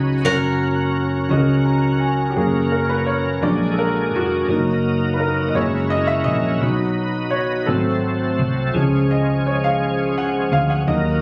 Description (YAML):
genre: slow gospel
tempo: 56 BPM (dotted quarters)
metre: 6/8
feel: straight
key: F# major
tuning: A4 = 438 Hz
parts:
  - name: bowl-back mandolin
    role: melody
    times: 0.0-1.6 s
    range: F#4 to F#5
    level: -27 LUFS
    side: equal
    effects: tape echo
  - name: warm baby grand piano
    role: accompaniment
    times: 0.0-11.2 s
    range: C#3 to A#5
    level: -23 LUFS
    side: equal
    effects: none
  - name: bright tonewheel organ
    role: sustained chords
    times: 0.0-11.2 s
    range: E#3 to B4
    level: -27 LUFS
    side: equal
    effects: slow rotary speaker, overdrive, chorus vibrato
  - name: hollow-body short-scale fingered electric bass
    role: bass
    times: 0.0-11.2 s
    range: E#1 to D#2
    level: -24 LUFS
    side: equal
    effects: none
  - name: mellow French horn section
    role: sustained chords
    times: 2.3-11.2 s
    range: E#3 to B#4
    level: -30 LUFS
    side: equal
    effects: none
room: light reverb, small room ambience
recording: recorded on a phone in the room, club reverb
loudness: -19 LUFS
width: mono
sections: 0.0-2.4 A section; 2.4-11.2 B section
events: grand piano fill 1.3-2.4; grand piano solo 2.4-11.2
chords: 0.2 F#; 3.4 A#7b13; 4.5 D#m/F#; 5.6 F#7; 6.6 B; 7.7 G#7b9; 8.7 C#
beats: | 0.25 1.31 | 2.37 3.43 | 4.50 5.56 | 6.62 7.68 | 8.75 9.81 | 10.87